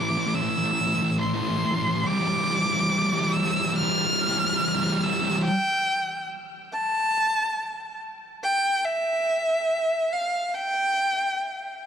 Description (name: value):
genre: rock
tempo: 71 BPM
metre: 4/4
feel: straight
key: unclear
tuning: A4 = 440 Hz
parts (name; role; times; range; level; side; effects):
- rich violin; melody; 0.0-11.8 s; E5 to F6; -24 LUFS; equal; slapback echo
- thick fuzz guitar; riff; 0.0-5.5 s; A2 to G3; -25 LUFS; equal; distortion
room: light reverb, small room ambience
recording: dark, warm production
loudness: -22 LUFS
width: side -8 dB against mid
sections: 0.0-5.5 A section; 5.5-11.9 B section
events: build-up 0.0-5.5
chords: 0.0 Am; 2.1 Em; 5.5 N.C.